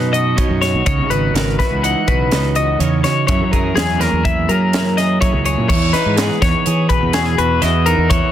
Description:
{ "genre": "math rock and midwest emo", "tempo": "124 BPM", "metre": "5/4", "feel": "straight", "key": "unclear", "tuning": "A4 = 440 Hz", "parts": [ { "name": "twelve-string electric guitar", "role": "accompaniment", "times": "0.0-8.3 s", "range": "F#2 to C#5", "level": "-20 LUFS", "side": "right 8 dB", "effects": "spring reverb, plate reverb" }, { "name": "twelve-string electric guitar", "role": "arpeggios", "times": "0.0-8.3 s", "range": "G#4 to F#5", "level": "-18 LUFS", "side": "left 6 dB", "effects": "tape echo, plate reverb" }, { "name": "fuzz fingered electric bass", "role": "bass", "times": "0.0-8.2 s", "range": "G#1 to F#3", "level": "-18 LUFS", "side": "equal", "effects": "overdrive" }, { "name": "crisp fusion drum kit", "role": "drums", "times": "0.1-8.2 s", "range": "crash cymbal, hi-hat, kick drum, snare drum", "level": "-20 LUFS", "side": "equal", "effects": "none" } ], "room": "light reverb", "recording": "dense, heavily limited modern master", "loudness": "-13 LUFS", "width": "side -11 dB against mid", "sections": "0.0-5.7 A section; 5.7-8.3 B section", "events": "none", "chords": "0.0 Badd9; 0.9 C#m11; 3.3 F#9; 5.7 Emaj7" }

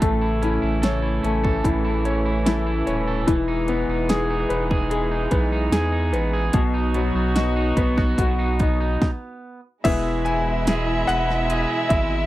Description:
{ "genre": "pop ballad", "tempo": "74 BPM", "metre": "4/4", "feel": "straight", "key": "E major", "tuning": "A4 = 440 Hz", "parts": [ { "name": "bright concert grand piano", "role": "accompaniment", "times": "0.0-12.3 s", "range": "B2 to G#5", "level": "-25 LUFS", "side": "left 4 dB", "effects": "none" }, { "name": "warm studio string section", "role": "sustained chords", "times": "0.0-12.3 s", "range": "B2 to F#4", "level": "-28 LUFS", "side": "right 1 dB", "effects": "none" }, { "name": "electric guitar at the edge of break-up", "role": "arpeggios", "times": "0.0-12.3 s", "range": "A2 to A4", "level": "-28 LUFS", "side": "right 4 dB", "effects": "warbly pitch drift" }, { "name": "saturated sub bass", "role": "bass", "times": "0.0-12.3 s", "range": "D#1 to E2", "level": "-24 LUFS", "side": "equal", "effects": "none" }, { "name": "pop drum kit", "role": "drums", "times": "0.0-12.1 s", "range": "crash cymbal, hi-hat, kick drum, snare drum", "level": "-22 LUFS", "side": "equal", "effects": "overdrive" }, { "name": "dark studio violin section", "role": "second line", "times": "9.9-12.3 s", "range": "E4 to E5", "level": "-26 LUFS", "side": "right 1 dB", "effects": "none" } ], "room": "little or no reverb", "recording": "dry, close 1970s-style studio recording", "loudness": "-19 LUFS", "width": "side -16 dB against mid", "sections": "0.0-9.9 A section; 9.9-12.3 B section", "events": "stop 9.0-9.9; grand piano solo 9.9-12.3", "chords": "0.0 A; 3.3 Emaj7; 6.5 B; 9.9 E" }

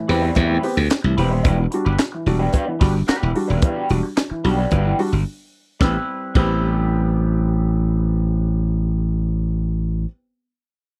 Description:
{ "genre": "funk", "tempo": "110 BPM", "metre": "4/4", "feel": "straight", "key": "A dorian", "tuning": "A4 = 439 Hz", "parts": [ { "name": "warm upright piano", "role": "stabs", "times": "0.0-10.1 s", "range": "A2 to G4", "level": "-28 LUFS", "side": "equal", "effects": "none" }, { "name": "electric guitar through a small old amp", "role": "accompaniment", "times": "0.1-10.1 s", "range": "G3 to C5", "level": "-29 LUFS", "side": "equal", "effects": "wah" }, { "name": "glassy slap bass", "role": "bass", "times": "0.1-10.0 s", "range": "D#1 to E2", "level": "-21 LUFS", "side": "equal", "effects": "none" }, { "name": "compact cocktail drum kit", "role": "drums", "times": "0.1-6.5 s", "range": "crash cymbal, handclaps, hi-hat, kick drum, snare drum", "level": "-21 LUFS", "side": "equal", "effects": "none" } ], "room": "little or no reverb", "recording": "dry, close 1970s-style studio recording", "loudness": "-20 LUFS", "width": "mono", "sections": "0.0-5.8 A section; 5.8-10.2 B section", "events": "break 5.3-5.8", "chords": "0.0 Am9; 1.4 Em7; 5.8 Am9" }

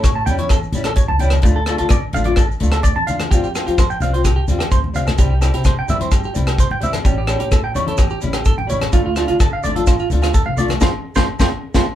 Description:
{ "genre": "highlife guitar band", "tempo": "128 BPM", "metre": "4/4", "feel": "straight", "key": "unclear", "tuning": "A4 = 440 Hz", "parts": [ { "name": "flamenco guitar", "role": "accompaniment", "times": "0.0-11.8 s", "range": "G3 to F4", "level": "-23 LUFS", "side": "left 3 dB", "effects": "none" }, { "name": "clean electric guitar", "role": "arpeggios", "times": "0.0-11.8 s", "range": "F4 to A5", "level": "-22 LUFS", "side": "right 4 dB", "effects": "none" }, { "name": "upright bass", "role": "bass", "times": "0.0-11.8 s", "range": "A1 to F3", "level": "-21 LUFS", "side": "equal", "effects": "none" }, { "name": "tight funk drum kit", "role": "drums", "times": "0.0-11.9 s", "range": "hi-hat, kick drum, rim click, snare drum", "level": "-18 LUFS", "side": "equal", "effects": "none" }, { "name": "agogo bells", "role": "percussion", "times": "0.0-11.9 s", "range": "none", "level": "-30 LUFS", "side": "left 8 dB", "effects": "none" }, { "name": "congas", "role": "percussion", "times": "0.0-11.9 s", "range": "none", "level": "-25 LUFS", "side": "left 2 dB", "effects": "none" }, { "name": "maracas", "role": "percussion", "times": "0.0-11.9 s", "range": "none", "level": "-35 LUFS", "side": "right 6 dB", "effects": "none" } ], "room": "moderate small room ambience, RT60 0.5 s", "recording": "band playing live in one room", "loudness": "-14 LUFS", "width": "side -12 dB against mid", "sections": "0.0-11.9 A section", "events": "drum fill 4.6-5.2; band accent 10.8-11.9", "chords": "0.0 A7; 1.4 Dm; 3.3 Fsus2; 5.2 C; 7.0 A7; 8.9 Dm; 10.8 Fsus2" }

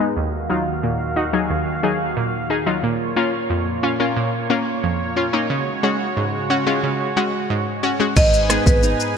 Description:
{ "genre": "dancehall", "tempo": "90 BPM", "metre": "4/4", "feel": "straight", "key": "Eb minor", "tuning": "A4 = 439 Hz", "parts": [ { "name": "analog pluck", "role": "accompaniment", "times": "0.0-8.6 s", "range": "Eb2 to Ab4", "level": "-20 LUFS", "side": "left 1 dB", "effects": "chorus, low-pass filter" }, { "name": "warm analog pad", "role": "sustained chords", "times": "0.0-9.2 s", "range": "Eb2 to Ab5", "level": "-24 LUFS", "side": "right 2 dB", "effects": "chorus, tremolo, sidechain pumping, low-pass filter" }, { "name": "marimba with hard mallets", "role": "melody", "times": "8.2-8.8 s", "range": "Cb5 to Eb5", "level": "-19 LUFS", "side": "right 1 dB", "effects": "none" }, { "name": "nylon-string guitar", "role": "arpeggios", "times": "8.2-9.2 s", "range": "Ab2 to Eb4", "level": "-24 LUFS", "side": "right 2 dB", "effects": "analog chorus, ping-pong delay" }, { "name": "short 808-style bass", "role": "bass", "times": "8.2-8.9 s", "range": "Ab1", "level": "-20 LUFS", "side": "equal", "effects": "none" }, { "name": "afro-pop drum kit", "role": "drums", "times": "8.2-9.2 s", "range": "crash cymbal, hi-hat, kick drum, rim click, shaker", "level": "-18 LUFS", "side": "equal", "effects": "none" } ], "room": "moderate lush hall reverb, RT60 2.7 s", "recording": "bright 1980s-style digital production", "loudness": "-18 LUFS", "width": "side -7 dB against mid", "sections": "0.0-8.2 A section; 8.2-9.2 B section", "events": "filter sweep 0.0-8.2", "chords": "0.2 Ebmadd9; 2.8 Bbm; 5.5 Dbsus4; 8.2 Abm" }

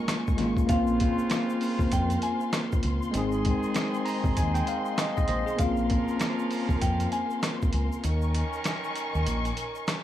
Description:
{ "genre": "hip hop, boom-bap hip-hop", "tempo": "98 BPM", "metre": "4/4", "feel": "swing 61% on 16ths", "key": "Bb minor", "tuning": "A4 = 440 Hz", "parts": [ { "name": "bell-like tine electric piano", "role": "accompaniment", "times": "0.0-8.1 s", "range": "Ab3 to Bb5", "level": "-28 LUFS", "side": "left 1 dB", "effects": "medium stereo tremolo, high-pass filter, low-pass filter" }, { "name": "warm studio string section", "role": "sustained chords", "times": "0.0-10.0 s", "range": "Ab4 to Db6", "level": "-37 LUFS", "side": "left 2 dB", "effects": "high-pass filter, low-pass filter" }, { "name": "clear horn section", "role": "stabs", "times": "0.0-10.0 s", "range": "Db3 to Bb4", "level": "-37 LUFS", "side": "right 3 dB", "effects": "high-pass filter, low-pass filter, tape echo" }, { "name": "boom bap sampler-style drum kit", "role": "drums", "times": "0.1-10.0 s", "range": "hi-hat, kick drum, rim click, snare drum", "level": "-29 LUFS", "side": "equal", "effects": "none" }, { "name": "egg shaker", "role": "percussion", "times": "0.1-10.0 s", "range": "none", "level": "-52 LUFS", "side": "right 4 dB", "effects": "none" }, { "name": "deep dub fingered electric bass", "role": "bass", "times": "0.4-9.5 s", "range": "Ab1 to F2", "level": "-28 LUFS", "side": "equal", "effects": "tube saturation" }, { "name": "semi-hollow electric guitar", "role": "melody", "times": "0.7-7.4 s", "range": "F5 to Ab5", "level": "-35 LUFS", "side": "left 2 dB", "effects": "high-pass filter, low-pass filter, tape echo" } ], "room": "little or no reverb", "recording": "dry, gritty hardware recording, small room ambience", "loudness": "-24 LUFS", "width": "side -12 dB against mid", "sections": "0.0-10.0 A section", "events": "kick muted 8.0-10.0", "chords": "0.0 Eb7sus4; 0.7 Bbmadd9; 3.1 Ab; 5.6 Bbmadd9; 8.0 Eb7sus4" }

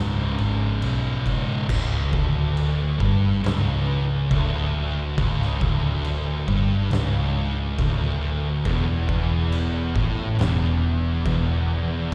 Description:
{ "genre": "stoner and doom metal", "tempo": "69 BPM", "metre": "4/4", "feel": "straight", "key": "unclear", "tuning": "A4 = 440 Hz", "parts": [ { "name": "thick fuzz guitar", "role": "riff", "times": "0.0-12.1 s", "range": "C#2 to C#3", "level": "-30 LUFS", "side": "equal", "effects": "distortion" }, { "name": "thick fuzz guitar", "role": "riff", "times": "0.0-12.1 s", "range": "C#2 to C#3", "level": "-30 LUFS", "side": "equal", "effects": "distortion" }, { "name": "vintage muted picked electric bass", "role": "bass", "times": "0.0-12.1 s", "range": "C#1 to B1", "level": "-26 LUFS", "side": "equal", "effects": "overdrive" }, { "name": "oversized low-tuned drum kit", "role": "drums", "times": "0.4-12.1 s", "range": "crash cymbal, kick drum, snare drum", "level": "-32 LUFS", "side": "equal", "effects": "none" }, { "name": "distorted electric guitar", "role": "riff", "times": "8.7-12.1 s", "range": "E2 to A2", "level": "-33 LUFS", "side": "equal", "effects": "distortion" } ], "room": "light reverb", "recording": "live gig heard through the venue's PA, recital hall reverb", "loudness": "-23 LUFS", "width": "mono", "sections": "0.0-1.7 A section; 1.7-12.1 B section", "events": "none", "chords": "0.0 C#5; 1.7 G5; 8.7 Esus4" }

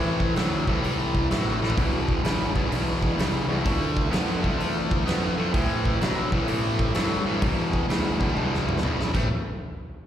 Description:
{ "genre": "blues rock power trio and southern rock", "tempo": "128 BPM", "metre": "4/4", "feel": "swing 66% on 8ths", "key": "A minor", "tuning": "A4 = 445 Hz", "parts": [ { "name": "percussive tonewheel organ", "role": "sustained chords", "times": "0.0-9.3 s", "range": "C4 to A5", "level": "-34 LUFS", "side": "right 3 dB", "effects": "slow rotary speaker" }, { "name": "distorted electric guitar", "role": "riff", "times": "0.0-9.3 s", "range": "E2 to B3", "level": "-26 LUFS", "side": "left 1 dB", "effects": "overdrive, slapback echo" }, { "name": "overdriven picked electric bass", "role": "bass", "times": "0.0-9.3 s", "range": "E1 to B2", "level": "-28 LUFS", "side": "equal", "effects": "none" }, { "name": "huge arena drum kit", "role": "drums", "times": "0.2-9.2 s", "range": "crash cymbal, hi-hat, kick drum, snare drum, toms", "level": "-27 LUFS", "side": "equal", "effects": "none" } ], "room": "light reverb", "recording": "live gig heard through the venue's PA, recital hall reverb", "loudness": "-22 LUFS", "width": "side -10 dB against mid", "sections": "0.0-9.3 A section", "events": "tonewheel organ fill 0.8-1.8; drum fill 1.5, 8.4-9.3", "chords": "0.0 Am7; 1.8 E7; 3.7 Dm7; 5.5 Am7; 7.4 E7; 9.1 Am7; 9.3 N.C." }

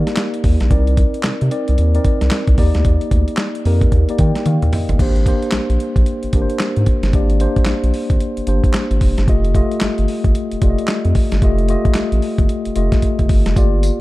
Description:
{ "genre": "R&B, new jack swing", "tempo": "112 BPM", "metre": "4/4", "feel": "swing 62% on 16ths", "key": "unclear", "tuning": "A4 = 444 Hz", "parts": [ { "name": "mellow tine electric piano", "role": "accompaniment", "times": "0.0-14.0 s", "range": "A3 to G5", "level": "-20 LUFS", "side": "left 1 dB", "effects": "fast stereo tremolo" }, { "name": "round analog bass", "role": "bass", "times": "0.0-13.9 s", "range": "F1 to Eb3", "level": "-16 LUFS", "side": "equal", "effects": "none" }, { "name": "dusty soul sampler-style drum kit", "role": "drums", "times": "0.1-14.0 s", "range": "crash cymbal, handclaps, hi-hat, kick drum, snare drum, tambourine, toms", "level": "-17 LUFS", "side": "equal", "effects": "none" } ], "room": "little or no reverb", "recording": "dark, warm production", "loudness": "-14 LUFS", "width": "side -18 dB against mid", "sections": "0.0-5.0 A section; 5.0-13.6 B section", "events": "tine electric piano fill 3.9-5.0; drum fill 4.5-5.0, 13.0-13.6", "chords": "0.0 Ebmaj7; 0.7 Cm9; 2.6 Ebmaj7; 5.0 Abmaj9#11; 9.3 F9" }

